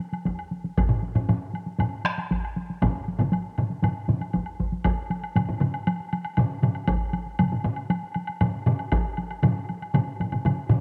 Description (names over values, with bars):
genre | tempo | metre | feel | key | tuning
japanese traditional, taiko drum ensemble | 118 BPM | 4/4 | straight | none | none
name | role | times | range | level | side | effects
solo taiko drums | percussion | 0.0-10.8 s | none | -30 LUFS | equal | none
woodblock | percussion | 0.1-10.8 s | none | -38 LUFS | equal | none
taiko ensemble | percussion | 0.3-9.0 s | none | -30 LUFS | equal | none
taiko ensemble | percussion | 0.9-10.8 s | none | -28 LUFS | equal | none
taiko ensemble | percussion | 2.8-10.8 s | none | -30 LUFS | equal | none
room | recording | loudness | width
light reverb | home recording on cassette | -26 LUFS | mono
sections
0.0-4.9 A section; 4.9-10.8 B section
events
none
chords
none